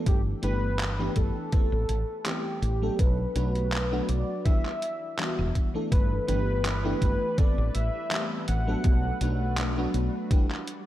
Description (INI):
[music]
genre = vaporwave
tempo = 82 BPM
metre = 4/4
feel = swing 54% on 16ths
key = unclear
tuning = A4 = 440 Hz
[part]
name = FM electric piano with soft pad layer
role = accompaniment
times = 0.0-10.4 s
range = E3 to A4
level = -32 LUFS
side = equal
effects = ensemble chorus
[part]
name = warm velvety synth lead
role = melody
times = 0.1-9.9 s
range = G4 to F#5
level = -33 LUFS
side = equal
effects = chorus, tape echo
[part]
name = woody fretless electric bass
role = bass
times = 0.1-10.1 s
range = E1 to B1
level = -28 LUFS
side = equal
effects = none
[part]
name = detuned 8-bit digital drum machine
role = drums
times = 0.1-10.8 s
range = handclaps, hi-hat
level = -34 LUFS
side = equal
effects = gated reverb
[part]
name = electronic kick drum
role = drums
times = 0.1-10.5 s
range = none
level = -23 LUFS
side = equal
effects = none
[part]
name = soft string machine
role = sustained chords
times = 6.4-10.9 s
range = G3 to D5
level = -39 LUFS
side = left 1 dB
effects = phaser, ensemble chorus
[sound]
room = light reverb, digital ambience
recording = none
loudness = -24 LUFS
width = side -14 dB against mid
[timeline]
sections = 0.0-5.9 A section; 5.9-10.9 B section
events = none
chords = 0.1 G69; 1.5 Am9; 3.0 Bm7; 4.5 Em9; 5.9 G69; 7.4 Am9; 8.8 Bm7; 10.3 Em9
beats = | 0.07 0.80 1.53 2.26 | 2.99 3.73 4.46 5.19 | 5.92 6.65 7.38 8.12 | 8.85 9.58 10.31